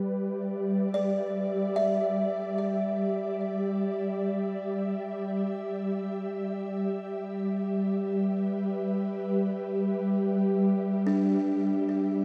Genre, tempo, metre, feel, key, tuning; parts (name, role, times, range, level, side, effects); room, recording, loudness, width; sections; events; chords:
ambient; free time; A4 = 440 Hz
ethereal airy pad; sustained chords; 0.0-12.2 s; G3 to E5; -30 LUFS; equal; ensemble chorus, built-in reverb
buzzing kalimba; arpeggios; 0.9-12.2 s; D4 to E5; -32 LUFS; equal; delay
wet huge ambient reverb, RT60 7.1 s; dreamy mix soaked in reverb; -29 LUFS; mono
0.0-12.2 A section
0.0 Em/G; 10.4 Csus2/G (rootless)